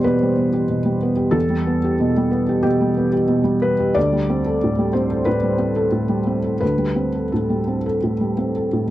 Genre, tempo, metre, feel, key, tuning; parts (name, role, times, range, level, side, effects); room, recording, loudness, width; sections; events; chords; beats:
neoclassical minimalist piano; 84-94 BPM; 4/4; rubato; A4 = 440 Hz
felt-muted upright piano; solo; 0.0-8.9 s; D2 to D5; -17 LUFS; equal
light reverb; dry, close 1970s-style studio recording; -17 LUFS; side -14 dB against mid
0.0-8.9 A section
0.0 Em7; 4.0 D7sus4
0.03 0.69 | 1.35 2.01 2.66 3.30 | 3.96 4.62 5.26 5.93 | 6.62 7.32 8.03 8.73